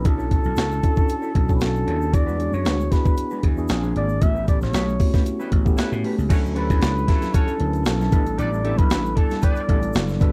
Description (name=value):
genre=polished 1980s jazz-funk pop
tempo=115 BPM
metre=4/4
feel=swing 54% on 16ths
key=unclear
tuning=A4 = 440 Hz
part: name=warm flugelhorn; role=melody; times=0.0-10.2 s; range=A4 to E5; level=-31 LUFS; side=equal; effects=none
part: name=mellow tine electric piano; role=accompaniment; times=0.0-10.3 s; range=F#3 to B4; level=-29 LUFS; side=equal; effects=lush chorus
part: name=mellow electric guitar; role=riff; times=0.0-10.3 s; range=F#3 to D5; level=-34 LUFS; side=equal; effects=lush chorus
part: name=vintage slap bass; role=bass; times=0.0-10.3 s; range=F#1 to A2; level=-26 LUFS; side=equal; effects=none
part: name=breakbeat sampler-style drum kit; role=drums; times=0.0-10.3 s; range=crash cymbal, hi-hat, kick drum, snare drum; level=-22 LUFS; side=equal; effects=none
part: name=egg shaker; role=percussion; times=0.0-10.3 s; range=none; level=-55 LUFS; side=equal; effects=none
part: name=clear horn section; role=second line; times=5.4-9.6 s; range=E3 to E5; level=-37 LUFS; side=equal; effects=none
room=little or no reverb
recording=dry, close 1970s-style studio recording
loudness=-21 LUFS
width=mono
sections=0.0-6.3 A section; 6.3-10.3 B section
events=band accent 4.2-6.3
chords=0.1 Bm11; 2.1 E9; 3.7 Bb9; 4.2 A9; 6.3 Dmaj9; 8.1 A7sus4